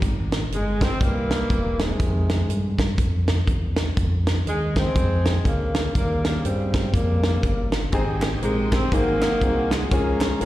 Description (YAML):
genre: uptempo gospel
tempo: 121 BPM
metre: 4/4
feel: swing 60% on 8ths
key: Ab major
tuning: A4 = 439 Hz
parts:
  - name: fingered electric bass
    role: bass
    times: 0.0-10.5 s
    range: E1 to G2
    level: -24 LUFS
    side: equal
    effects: none
  - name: tight funk drum kit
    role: drums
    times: 0.0-10.5 s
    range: hi-hat, kick drum, snare drum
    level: -24 LUFS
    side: equal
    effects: slapback echo
  - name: mellow saxophone section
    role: melody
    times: 0.5-10.5 s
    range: C3 to C4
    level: -25 LUFS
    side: equal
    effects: plate reverb, slapback echo
  - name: warm upright piano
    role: accompaniment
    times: 7.9-10.5 s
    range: Ab2 to Bb4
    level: -26 LUFS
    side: left 2 dB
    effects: plate reverb, slapback echo
  - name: bright tonewheel organ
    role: sustained chords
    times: 7.9-10.5 s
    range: F3 to Ab4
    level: -35 LUFS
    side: right 4 dB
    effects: slow rotary speaker, overdrive, chorus vibrato, plate reverb
  - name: clear studio string section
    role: sustained chords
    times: 7.9-10.5 s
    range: C5 to Bb5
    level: -38 LUFS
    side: left 3 dB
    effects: plate reverb
  - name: group handclap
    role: percussion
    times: 8.2-10.3 s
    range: none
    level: -37 LUFS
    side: left 1 dB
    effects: none
room: little or no reverb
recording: live gig heard through the venue's PA, recital hall reverb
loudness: -20 LUFS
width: side -15 dB against mid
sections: 0.0-10.5 A section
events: none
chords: 0.0 Abmaj7(no3); 1.0 C7; 2.0 Fm7; 3.0 N.C.; 4.0 Bbm7; 6.0 Eb7; 7.9 Abmaj7; 8.9 Ab7; 9.9 Db6